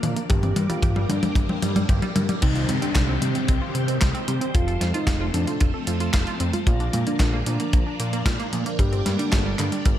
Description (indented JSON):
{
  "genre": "italo disco",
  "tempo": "113 BPM",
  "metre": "4/4",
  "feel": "straight",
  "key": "C dorian",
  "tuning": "A4 = 440 Hz",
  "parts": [
    { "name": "string machine, full ensemble", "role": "sustained chords", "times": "0.0-10.0 s", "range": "Eb3 to D5", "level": "-30 LUFS", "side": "equal", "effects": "phaser, ensemble chorus, vintage 12-bit sampler grit" },
    { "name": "analog pluck", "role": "arpeggios", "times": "0.0-9.9 s", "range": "D3 to F5", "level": "-32 LUFS", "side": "right 4 dB", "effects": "chorus, ping-pong delay" },
    { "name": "fat analog bass", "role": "bass", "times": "0.0-10.0 s", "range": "F1 to C3", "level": "-25 LUFS", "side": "equal", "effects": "none" },
    { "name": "clean 12-bit digital drum machine", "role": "drums", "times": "0.0-10.0 s", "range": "congas, crash cymbal, handclaps, hi-hat, snare drum, toms", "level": "-27 LUFS", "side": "left 1 dB", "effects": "gated reverb" },
    { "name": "soft octave-layered synth lead", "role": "melody", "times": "0.3-9.9 s", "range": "C4 to G4", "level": "-30 LUFS", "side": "left 1 dB", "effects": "chorus, ping-pong delay" },
    { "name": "kick drum", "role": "drums", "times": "0.3-10.0 s", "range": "none", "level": "-22 LUFS", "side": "equal", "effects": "none" },
    { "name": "downlifter", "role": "sound effects", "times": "2.4-6.7 s", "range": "none", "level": "-33 LUFS", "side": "left 3 dB", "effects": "none" }
  ],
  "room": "little or no reverb",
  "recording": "none",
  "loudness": "-20 LUFS",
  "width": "side -11 dB against mid",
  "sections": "0.0-2.4 A section; 2.4-10.0 B section",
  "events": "drum fill 0.0-2.4; filter sweep on synth arpeggio sound 0.0-2.4; filter sweep on string machine 0.0-2.4; filter sweep on soft synth lead 0.0-2.4",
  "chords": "0.3 Gm; 2.4 Cm; 4.5 F; 6.7 Bb; 8.8 Gm"
}